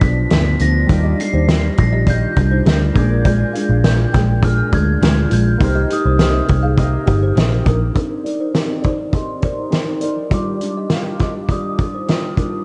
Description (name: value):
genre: indie pop, bedroom pop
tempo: 102 BPM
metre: 4/4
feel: straight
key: C minor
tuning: A4 = 440 Hz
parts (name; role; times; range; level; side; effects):
- glockenspiel with rubber mallets; melody; 0.0-12.3 s; C6 to C7; -28 LUFS; equal; analog chorus, low-pass filter, analog delay
- kalimba; second line; 0.0-12.5 s; D4 to G5; -30 LUFS; equal; ensemble chorus, analog delay
- nylon-string guitar; accompaniment; 0.0-12.6 s; G2 to D5; -24 LUFS; equal; subtle chorus, warbly pitch drift, low-pass filter
- warm analog keys; accompaniment; 0.0-8.0 s; G3 to D5; -30 LUFS; equal; none
- vintage muted picked electric bass; bass; 0.0-7.9 s; G1 to Eb2; -18 LUFS; equal; none
- loose indie drum kit; drums; 0.0-12.5 s; hi-hat, kick drum, snare drum; -20 LUFS; equal; vintage 12-bit sampler grit
room: moderate lush hall reverb, RT60 2.4 s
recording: dreamy mix soaked in reverb, cassette tape, nothing above 10.6 kHz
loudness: -16 LUFS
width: mono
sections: 0.0-8.0 A section; 8.0-12.6 B section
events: filter sweep 8.0-12.6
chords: 0.0 G7; 0.9 Ebmaj9; 3.0 Bb7; 5.6 Cm7; 8.0 Cm9; 10.3 Ebmaj9